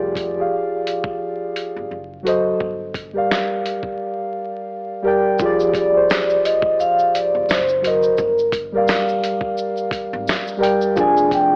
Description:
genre	lo-fi hip hop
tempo	86 BPM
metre	4/4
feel	swing 58% on 16ths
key	F dorian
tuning	A4 = 440 Hz
part	muted felt-like synth keys	accompaniment	0.0-11.6 s	F3 to G5	-22 LUFS	equal	chorus
part	upright bass	bass	0.0-11.6 s	F1 to Ab1	-38 LUFS	equal	none
part	boom bap sampler-style drum kit	drums	0.2-11.5 s	hi-hat, kick drum, shaker, snare drum	-26 LUFS	equal	none
part	vibraphone with soft mallets	melody	5.8-11.6 s	Bb4 to Ab5	-19 LUFS	equal	none
part	tambourine	percussion	6.1-10.5 s	none	-44 LUFS	equal	none
room	light reverb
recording	vinyl crackle, AM radio sound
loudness	-19 LUFS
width	mono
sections	0.0-5.4 A section; 5.4-11.6 B section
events	drums muted 4.0-5.4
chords	0.0 Fm69; 1.9 F#dim7; 2.6 Gm7; 5.4 Fm69; 7.5 Ebm6/Gb; 8.2 Gm7; 11.0 Fm69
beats	0.51 1.21 1.91 | 2.60 3.30 4.00 4.70 | 5.39 6.09 6.79 7.49 | 8.19 8.88 9.58 10.28 | 10.97

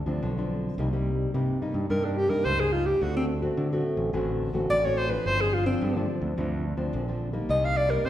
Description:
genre	samba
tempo	107 BPM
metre	4/4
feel	straight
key	C minor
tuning	A4 = 440 Hz
part	nylon-string guitar	accompaniment	0.0-8.1 s	G2 to F#4	-30 LUFS	left 1 dB	none
part	growling fingered electric bass	bass	0.1-8.1 s	G1 to D3	-28 LUFS	equal	overdrive
part	breathy alto saxophone	melody	1.9-8.1 s	C4 to F5	-25 LUFS	equal	none
room	wet recital hall reverb, RT60 1.5 s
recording	recorded in a church or concert hall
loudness	-24 LUFS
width	side -12 dB against mid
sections	0.0-8.1 A section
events	alto saxophone solo 0.0-8.1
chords	0.0 G7sus4; 0.8 Cm7; 3.0 D7; 5.3 G7sus4; 7.5 Cm7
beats	0.22 | 0.78 1.34 1.90 2.46 | 3.02 3.58 4.13 4.69 | 5.25 5.81 6.37 6.93 | 7.49 8.05

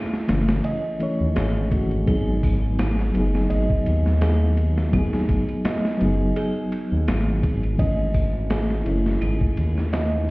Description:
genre	trip hop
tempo	84 BPM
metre	4/4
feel	swing 55% on 16ths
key	G# phrygian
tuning	A4 = 445 Hz
part	reed electric piano	accompaniment	0.0-10.3 s	E3 to C#5	-25 LUFS	equal	tremolo, vintage 12-bit sampler grit, tape echo
part	music box	arpeggios	0.0-10.3 s	D#4 to D#5	-31 LUFS	right 2 dB	digital delay
part	boom bap sampler-style drum kit	drums	0.1-10.1 s	hi-hat, kick drum, ride cymbal, snare drum	-25 LUFS	equal	none
part	egg shaker	percussion	0.1-10.3 s	none	-61 LUFS	right 3 dB	none
part	dark detuned saw bass	bass	0.3-10.3 s	F#1 to D#2	-22 LUFS	equal	tube saturation
room	digital ambience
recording	heard muffled through a wall, stone room reverb, EQ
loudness	-19 LUFS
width	side -22 dB against mid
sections	0.0-10.3 A section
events	none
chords	0.0 A; 2.1 G#m7; 7.8 A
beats	0.65 1.36 | 2.07 2.79 3.50 4.22 | 4.93 5.65 6.36 7.07 | 7.79 8.50 9.22 9.93

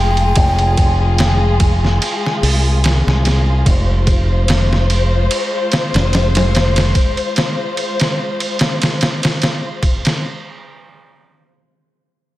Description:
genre	trip hop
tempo	73 BPM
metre	4/4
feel	swing 54% on 16ths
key	F minor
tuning	A4 = 440 Hz
part	bright baroque flute	melody	0.0-1.2 s	G5	-22 LUFS	left 1 dB	tape echo
part	warm studio string section	sustained chords	0.0-10.2 s	Ab3 to C5	-21 LUFS	left 2 dB	vintage 12-bit sampler grit
part	fingered electric bass with an envelope filter	bass	0.0-6.9 s	F1 to C2	-14 LUFS	equal	tube saturation
part	trip hop sampler-style drum kit	drums	0.2-10.2 s	hi-hat, kick drum, ride cymbal, snare drum	-17 LUFS	equal	studio reverb
room	digital ambience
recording	none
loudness	-13 LUFS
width	side -16 dB against mid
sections	0.0-10.2 A section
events	none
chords	0.0 Fm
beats	| 0.37 1.19 2.02 2.84 | 3.66 4.48 5.30 6.12 | 6.95 7.77 8.59 9.41

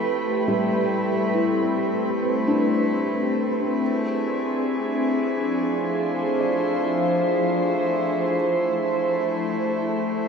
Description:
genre	ambient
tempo	53 BPM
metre	4/4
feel	straight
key	A minor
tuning	A4 = 440 Hz
part	glassy FM pad	sustained chords	0.0-10.3 s	F3 to C5	-22 LUFS	equal	ensemble chorus, built-in reverb
part	felt-muted upright piano	arpeggios	0.0-10.3 s	G3 to D5	-28 LUFS	left 2 dB	analog delay
part	hand-pumped harmonium	drone	0.0-10.3 s	A3 to E4	-30 LUFS	equal	none
room	wet lush hall reverb, RT60 2.8 s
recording	dreamy mix soaked in reverb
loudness	-20 LUFS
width	side -6 dB against mid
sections	0.0-10.3 A section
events	filter sweep on ambient pad 0.0-10.3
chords	0.0 Am9; 3.8 E7b9b13; 8.3 C6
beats	0.42 1.55 2.68 | 3.81 4.95 6.08 7.21 | 8.34 9.47

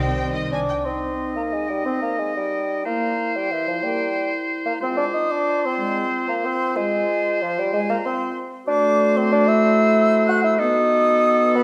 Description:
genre	classical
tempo	166-204 BPM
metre	3/4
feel	rubato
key	C minor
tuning	A4 = 435 Hz
part	warm studio violin section	melody	0.0-0.5 s	C5	-47 LUFS	equal	none
part	bright oboe	second line	0.0-11.6 s	A4 to Eb5	-30 LUFS	equal	none
part	bright silver concert flute	second line	0.0-11.6 s	E5 to F#6	-30 LUFS	equal	none
part	mellow clarinet	second line	0.0-11.6 s	Eb4 to C5	-31 LUFS	equal	none
part	rich symphonic violin section	second line	0.0-0.8 s	Eb5 to Ab5	-34 LUFS	equal	none
part	mellow bassoon	accompaniment	0.0-11.6 s	E3 to F#4	-24 LUFS	equal	none
part	rich symphonic viola section	accompaniment	0.0-0.7 s	Eb3 to C4	-34 LUFS	equal	none
part	mellow French horn section	sustained chords	0.0-11.6 s	Eb3 to C4	-27 LUFS	equal	none
part	dark studio cello section	bass	0.0-0.5 s	C4	-38 LUFS	equal	none
part	warm symphonic double bass section	bass	0.0-0.7 s	C2	-32 LUFS	equal	none
room	wet scoring stage reverb, RT60 1.6 s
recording	none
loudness	-21 LUFS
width	mono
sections	0.8-11.6 A section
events	none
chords	0.0 Cm; 2.9 C7; 4.8 Fm/Ab; 8.7 F#m7b5/A; 10.6 B7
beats	0.17 0.52 | 0.85 1.18 1.53 | 1.85 2.19 2.53 | 2.86 3.19 3.53 | 3.85 4.17 4.50 | 4.82 5.14 5.48 | 5.80 6.12 6.45 | 6.76 7.09 7.42 | 7.73 8.05 8.38 | 8.68 8.99 9.32 | 9.63 9.95 10.28 | 10.60 10.91 11.24 | 11.55

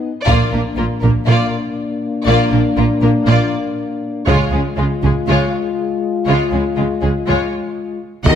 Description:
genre	cinematic, epic orchestral film score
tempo	120 BPM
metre	4/4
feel	straight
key	unclear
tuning	A4 = 440 Hz
part	dark French horn section	sustained chords	0.0-8.4 s	Ab3 to Gb4	-20 LUFS	left 5 dB	none
part	warm symphonic violin section	melody	0.3-8.4 s	F4 to Gb5	-25 LUFS	left 4 dB	none
part	warm symphonic violin section	second line	0.3-8.4 s	Ab3 to Eb5	-22 LUFS	left 3 dB	none
part	clear symphonic viola section	accompaniment	0.3-8.4 s	Ab3 to Bb4	-24 LUFS	right 1 dB	none
part	rich symphonic cello section	bass	0.3-8.4 s	Bb2 to Eb3	-20 LUFS	right 3 dB	none
part	rich symphonic double bass section	bass	0.3-8.4 s	Bb1 to Eb2	-19 LUFS	right 3 dB	none
part	taiko ensemble	drums	0.3-1.3, 4.3-5.3, 8.3-8.4 s	none	-19 LUFS	equal	none
part	mellow trombone section	sustained chords	8.3-8.4 s	Eb3 to Eb4	-24 LUFS	right 5 dB	none
room	moderate scoring stage reverb, RT60 1.8 s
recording	none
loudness	-14 LUFS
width	side -9 dB against mid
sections	0.0-8.3 A section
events	build-up 0.0-8.3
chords	0.3 Bb; 4.3 Db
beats	| 0.27 0.77 1.27 1.77 | 2.27 2.77 3.27 3.77 | 4.27 4.77 5.27 5.77 | 6.27 6.77 7.27 7.77 | 8.27

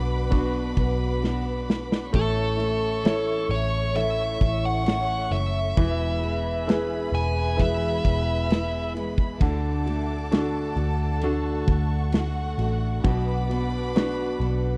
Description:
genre	pop ballad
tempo	66 BPM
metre	4/4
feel	straight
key	A major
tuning	A4 = 440 Hz
part	dark studio violin section	second line	0.0-14.8 s	F#4 to C#6	-37 LUFS	equal	none
part	bright concert grand piano	accompaniment	0.0-14.8 s	B2 to C#5	-33 LUFS	equal	none
part	dark studio string section	sustained chords	0.0-14.8 s	G#4 to D6	-40 LUFS	equal	none
part	picked steel-string acoustic guitar	arpeggios	0.0-14.8 s	E2 to F#4	-35 LUFS	equal	none
part	vintage muted fingered electric bass	bass	0.0-14.8 s	E1 to D2	-29 LUFS	equal	none
part	modern studio drum kit	drums	0.3-14.6 s	kick drum, ride cymbal, snare drum	-25 LUFS	equal	none
part	dark smooth lead guitar	melody	2.2-8.9 s	A4 to G#5	-30 LUFS	equal	overdrive
room	small room ambience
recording	dry, close 1970s-style studio recording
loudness	-25 LUFS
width	mono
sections	0.0-14.8 A section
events	drum fill 1.2-2.1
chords	0.0 Bm; 2.1 A; 5.8 E; 9.4 D; 13.0 Bm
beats	0.32 1.23 | 2.14 3.05 3.96 4.86 | 5.77 6.68 7.59 8.50 | 9.41 10.32 11.23 12.14 | 13.05 13.96

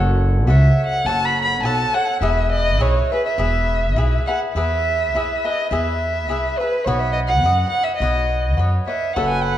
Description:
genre	mexican folk, mariachi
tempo	104 BPM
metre	2/4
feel	rubato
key	E major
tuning	A4 = 437 Hz
part	cavaquinho	accompaniment	0.0-9.6 s	E4 to F#5	-24 LUFS	left 2 dB	none
part	upright bass	bass	0.0-9.6 s	E1 to F#2	-19 LUFS	equal	none
part	dark violin	melody	0.5-9.6 s	B4 to B5	-20 LUFS	right 1 dB	slapback echo
part	clear trumpet	second line	9.2-9.6 s	B4	-25 LUFS	right 9 dB	none
room	moderate recital hall reverb, RT60 1.6 s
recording	dark, warm production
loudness	-16 LUFS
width	side -12 dB against mid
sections	0.0-4.5 A section; 4.5-9.6 A section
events	none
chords	0.0 F#m; 2.2 E; 6.9 Badd9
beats	0.48 | 1.05 1.63 | 2.21 2.78 | 3.37 3.96 | 4.55 5.13 | 5.71 6.29 | 6.86 7.43 | 8.01 8.58 | 9.17

